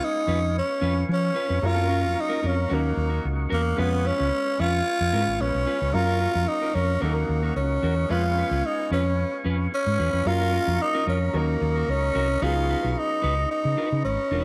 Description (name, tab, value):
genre	disco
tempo	111 BPM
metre	4/4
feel	straight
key	unclear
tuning	A4 = 440 Hz
part	growling tenor saxophone	melody	0.0-14.4 s	Bb3 to F4	-28 LUFS	equal	none
part	mellow electric guitar	accompaniment	0.0-14.4 s	Db4 to Cb5	-35 LUFS	equal	none
part	warm grand piano	accompaniment	0.0-14.4 s	Gb3 to Cb5	-36 LUFS	equal	none
part	tonewheel organ	sustained chords	0.0-14.4 s	Bb4 to Db6	-37 LUFS	equal	slow rotary speaker
part	hollow-body short-scale fingered electric bass	bass	0.3-14.4 s	Fb1 to F3	-27 LUFS	equal	none
room	light reverb, studio ambience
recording	none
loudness	-24 LUFS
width	mono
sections	0.0-14.4 A section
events	none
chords	0.0 Db7; 1.6 Gbmaj7; 2.7 Ebm7; 3.8 Db7; 5.9 Gbmaj7; 7.0 Ebm7; 8.1 Db7; 10.3 Gbmaj7; 11.3 Ebm7; 12.4 Db9sus4